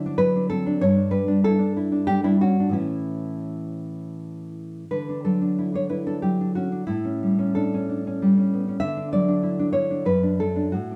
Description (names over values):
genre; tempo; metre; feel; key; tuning
romantic piece for solo classical guitar; 83-99 BPM; 3/4; rubato; D major; A4 = 440 Hz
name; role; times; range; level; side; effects
nylon-string guitar; solo; 0.0-11.0 s; F#2 to E5; -24 LUFS; equal; slapback echo
room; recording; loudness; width
moderate studio reverb, RT60 0.5 s; heard from further back in the room; -23 LUFS; mono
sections
0.0-4.9 A section; 4.9-11.0 B section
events
none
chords
0.0 D7; 0.8 G5; 2.8 A; 4.9 D; 6.9 A7; 8.8 D; 10.1 D/F#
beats
0.20 | 0.82 1.44 2.09 | 2.77 3.48 4.20 | 4.91 5.57 6.21 | 6.86 7.55 8.18 | 8.79 9.43 10.06 | 10.74